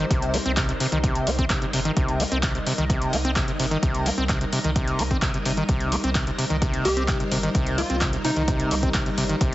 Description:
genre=acid house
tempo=129 BPM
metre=4/4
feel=straight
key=C minor pentatonic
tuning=A4 = 440 Hz
part: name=string machine, full ensemble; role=sustained chords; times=0.0-9.5 s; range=G3 to F5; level=-30 LUFS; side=equal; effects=ensemble chorus, sidechain pumping
part: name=overdriven acid bass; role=riff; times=0.0-9.5 s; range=C3 to Eb4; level=-25 LUFS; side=equal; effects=distortion
part: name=warm sub bass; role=bass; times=0.0-9.5 s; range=G1 to C2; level=-30 LUFS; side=equal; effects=sidechain pumping
part: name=booming analog drum machine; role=drums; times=0.1-9.5 s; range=handclaps, hi-hat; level=-29 LUFS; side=equal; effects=none
part: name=electronic kick drum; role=drums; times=0.1-9.5 s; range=none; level=-25 LUFS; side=equal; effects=overdrive
part: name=plucky unison lead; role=melody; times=6.9-8.9 s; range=Eb4 to G4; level=-29 LUFS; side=equal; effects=tape echo
room=moderate spring reverb, RT60 1.6 s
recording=heavily compressed radio sound, nothing above 7.9 kHz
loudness=-21 LUFS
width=side -16 dB against mid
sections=0.0-9.5 A section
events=none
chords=0.0 Cm7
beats=| 0.11 0.57 1.04 1.50 | 1.97 2.43 2.90 3.36 | 3.83 4.29 4.76 5.22 | 5.69 6.15 6.62 7.08 | 7.55 8.01 8.48 8.94 | 9.41

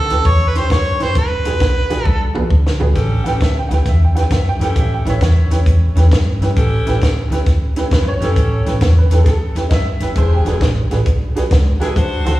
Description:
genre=electric blues shuffle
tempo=133 BPM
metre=4/4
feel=swing 66% on 8ths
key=A mixolydian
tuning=A4 = 441 Hz
part: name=warm harmonica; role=melody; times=0.0-2.5 s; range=A4 to C#5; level=-19 LUFS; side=right 1 dB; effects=overdrive, slapback echo
part: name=upright bass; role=bass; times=0.0-12.4 s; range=E1 to G2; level=-15 LUFS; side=equal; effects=none
part: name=honky-tonk upright piano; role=accompaniment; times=0.1-12.3 s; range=C#4 to G5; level=-23 LUFS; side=right 3 dB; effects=slapback echo
part: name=compact cocktail drum kit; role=drums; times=0.1-12.3 s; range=hi-hat, kick drum, snare drum, toms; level=-18 LUFS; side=equal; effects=none
part: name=warm saxophone section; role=stabs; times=2.9-12.4 s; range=C#4 to C5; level=-23 LUFS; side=left 3 dB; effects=slapback echo
room=little or no reverb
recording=live gig heard through the venue's PA, recital hall reverb, small room ambience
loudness=-13 LUFS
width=side -16 dB against mid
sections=0.0-3.0 A section; 3.0-12.4 B section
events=drum fill 2.1-3.0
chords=0.0 A7; 1.2 E7; 3.0 A7; 10.2 E7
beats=0.25 0.70 | 1.15 1.60 2.06 2.50 | 2.96 3.41 3.86 4.31 | 4.76 5.21 5.66 6.11 | 6.56 7.01 7.46 7.91 | 8.36 8.81 9.26 9.71 | 10.16 10.61 11.06 11.51 | 11.96

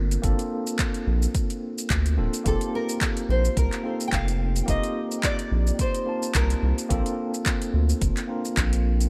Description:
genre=sunset chillout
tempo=108 BPM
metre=4/4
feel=swing 56% on 16ths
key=unclear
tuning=A4 = 440 Hz
part: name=tine electric piano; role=accompaniment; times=0.0-9.1 s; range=Bb3 to A5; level=-32 LUFS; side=equal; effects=analog delay
part: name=round analog bass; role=bass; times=0.0-9.1 s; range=D1 to D2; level=-25 LUFS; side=equal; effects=none
part: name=deep house drum kit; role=drums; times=0.1-9.1 s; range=handclaps, hi-hat, shaker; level=-33 LUFS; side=equal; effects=overdrive
part: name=electronic kick drum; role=drums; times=0.2-8.7 s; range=none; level=-29 LUFS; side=equal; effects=overdrive
part: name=nylon-string guitar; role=melody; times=2.5-6.8 s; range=A4 to G5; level=-33 LUFS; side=equal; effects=lush chorus, diffuse ambient delay
room=light reverb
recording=none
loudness=-25 LUFS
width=mono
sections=0.0-9.1 A section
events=none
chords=0.0 Gm11 (rootless); 2.5 F7sus4; 6.9 Bbmaj7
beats=| 0.24 0.79 1.35 1.90 | 2.46 3.02 3.57 4.13 | 4.68 5.24 5.79 6.35 | 6.90 7.46 8.02 8.57

